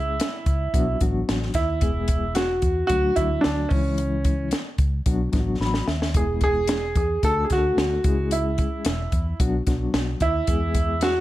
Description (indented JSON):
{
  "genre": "uptempo 1960s-style soul",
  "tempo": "111 BPM",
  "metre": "4/4",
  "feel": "straight",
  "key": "E mixolydian",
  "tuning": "A4 = 438 Hz",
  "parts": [
    { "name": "warm concert grand piano", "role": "melody", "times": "0.0-11.2 s", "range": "C#4 to A4", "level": "-24 LUFS", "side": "right 2 dB", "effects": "none" },
    { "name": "reed electric piano", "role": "accompaniment", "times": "0.0-11.1 s", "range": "E3 to B5", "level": "-28 LUFS", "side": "left 3 dB", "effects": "fast tremolo" },
    { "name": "vintage muted fingered electric bass", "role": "bass", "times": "0.0-11.2 s", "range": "E1 to E2", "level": "-27 LUFS", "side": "equal", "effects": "none" },
    { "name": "compact cocktail drum kit", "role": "drums", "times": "0.2-11.2 s", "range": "hi-hat, kick drum, snare drum", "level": "-24 LUFS", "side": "equal", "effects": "none" }
  ],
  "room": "light reverb",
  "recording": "none",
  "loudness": "-20 LUFS",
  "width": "side -15 dB against mid",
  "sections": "0.0-11.2 A section",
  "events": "reed electric piano fill 5.3-6.2; drum fill 5.6-6.2",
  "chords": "0.0 C#m; 0.7 Bm; 1.8 E; 2.9 D; 3.7 C#m; 5.1 Bm; 6.2 E; 7.2 D; 8.0 C#m; 9.4 Bm; 10.5 E"
}